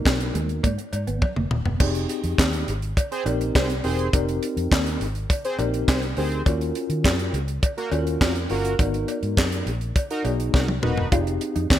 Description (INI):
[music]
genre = early-eighties boogie funk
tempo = 103 BPM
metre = 4/4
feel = straight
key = F phrygian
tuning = A4 = 435 Hz
[part]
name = mellow tine electric piano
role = accompaniment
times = 0.0-11.8 s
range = Cb4 to Bb4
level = -28 LUFS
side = left 2 dB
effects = medium stereo tremolo
[part]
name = vintage muted fingered electric bass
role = bass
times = 0.0-11.8 s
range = Eb1 to Eb3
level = -26 LUFS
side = equal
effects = none
[part]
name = tight funk drum kit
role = drums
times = 0.1-11.8 s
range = crash cymbal, handclaps, hi-hat, kick drum, snare drum, toms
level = -22 LUFS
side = equal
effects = gated reverb
[part]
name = cowbell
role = percussion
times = 0.1-11.8 s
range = none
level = -34 LUFS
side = left 1 dB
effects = none
[part]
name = mellow electric guitar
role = riff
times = 0.3-1.7, 11.1-11.6 s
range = Ab3 to F4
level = -31 LUFS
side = right 5 dB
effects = analog chorus
[part]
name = analog synth brass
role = second line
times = 3.1-11.1 s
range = Bb3 to C5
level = -30 LUFS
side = right 2 dB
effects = chorus
[sound]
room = light reverb, small room reverb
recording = bright 1980s-style digital production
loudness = -21 LUFS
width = side -12 dB against mid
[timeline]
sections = 0.0-1.8 A section; 1.8-11.8 B section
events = drum fill 1.2-1.8, 10.5-11.1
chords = 0.0 Abm9; 1.8 Fm9; 6.5 Ebm9; 8.8 Abm9; 11.1 Fm9